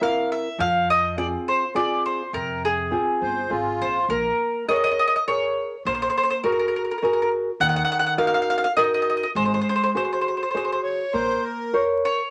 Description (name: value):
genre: italian folk, Italian serenade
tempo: 103 BPM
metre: 3/4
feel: straight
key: F dorian, Bb minor from 4.1 s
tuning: A4 = 442 Hz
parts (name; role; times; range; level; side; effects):
- mandolin; melody; 0.0-12.3 s; Ab4 to Gb5; -25 LUFS; equal; none
- nylon-string guitar; accompaniment; 0.0-12.2 s; C3 to Db5; -27 LUFS; equal; none
- upright bass; bass; 0.6-11.3 s; G1 to F2; -36 LUFS; equal; none
- accordion; second line; 3.2-4.0, 10.8-11.8 s; F4 to Db5; -28 LUFS; equal; light tremolo tuning
room: moderate studio reverb, RT60 0.6 s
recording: vinyl crackle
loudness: -23 LUFS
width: mono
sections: 0.0-4.1 A section; 4.1-12.3 B section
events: none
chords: 0.0 C7; 0.6 Fm; 4.1 Bbm7; 5.9 Gbadd9/Bb; 7.6 Ebm; 9.4 Ab7; 11.1 Bbmadd9